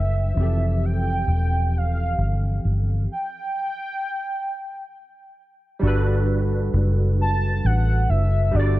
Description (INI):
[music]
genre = slow six-eight R&B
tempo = 44 BPM (dotted quarters)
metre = 6/8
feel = straight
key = G major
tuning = A4 = 439 Hz
[part]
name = warm velvety synth lead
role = melody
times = 0.0-8.8 s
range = D5 to A5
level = -28 LUFS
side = equal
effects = chorus
[part]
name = barky tine electric piano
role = accompaniment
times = 0.0-8.8 s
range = E3 to D5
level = -27 LUFS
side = right 2 dB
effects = overdrive, ensemble chorus
[part]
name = vintage muted fingered electric bass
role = bass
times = 0.0-8.8 s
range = E1 to A1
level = -20 LUFS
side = equal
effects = none
[sound]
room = digital ambience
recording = none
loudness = -20 LUFS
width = side -16 dB against mid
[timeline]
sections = 0.0-5.8 A section; 5.8-8.8 B section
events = stop 3.1-5.8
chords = 0.4 Fmaj9; 5.8 Gmaj9